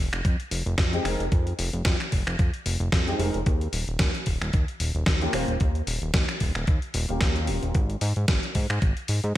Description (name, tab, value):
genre	nu-disco, nu disco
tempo	112 BPM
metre	4/4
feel	swing 56% on 16ths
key	unclear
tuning	A4 = 440 Hz
part	fat analog bass	bass	0.0-9.3 s	Eb1 to Ab2	-27 LUFS	equal	none
part	dusty soul sampler-style drum kit	drums	0.1-9.3 s	finger snaps, hi-hat, snare drum	-29 LUFS	equal	small room ambience, gated reverb
part	electronic kick drum	drums	0.2-8.9 s	none	-24 LUFS	equal	small room ambience
part	dark baby grand piano	accompaniment	0.9-7.7 s	Ab3 to C5	-31 LUFS	equal	ensemble chorus, sidechain pumping, digital delay
room	light reverb, digital ambience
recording	bright 1980s-style digital production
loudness	-23 LUFS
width	side -14 dB against mid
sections	0.0-9.4 A section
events	none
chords	0.0 Fm7; 3.5 Eb7; 7.7 N.C.